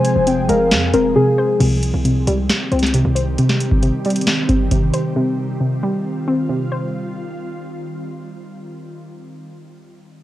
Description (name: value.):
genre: hip hop, trap.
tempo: 135 BPM.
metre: 4/4.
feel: half-time.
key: C minor.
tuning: A4 = 440 Hz.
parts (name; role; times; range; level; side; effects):
muted felt-like synth keys; melody; 0.0-1.6 s; Ab4 to C5; -17 LUFS; left 1 dB; chorus, low-pass filter, cassette tape, tape echo.
warm velvety synth lead; second line; 0.0-1.1 s; F5 to Ab5; -26 LUFS; right 1 dB; chorus, cassette tape, tape echo.
warbly dusty pluck; accompaniment; 0.0-7.8 s; C3 to C5; -19 LUFS; equal; chorus, low-pass filter, cassette tape.
ethereal airy pad; sustained chords; 0.0-8.7 s; Eb3 to Ab4; -24 LUFS; right 1 dB; ensemble chorus, built-in reverb, cassette tape.
booming analog drum machine; drums; 0.0-5.0 s; crash cymbal, hi-hat, kick drum, snare drum; -19 LUFS; equal; cassette tape.
hard-hitting 808-style bass; bass; 0.2-3.4 s; F1 to F2; -21 LUFS; equal; none.
room: light reverb, digital ambience.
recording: home recording on cassette.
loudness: -15 LUFS.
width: side -14 dB against mid.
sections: 0.0-1.6 A section; 1.6-8.7 B section.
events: drums muted 1.2-1.6.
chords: 0.0 Fm; 1.6 Cm.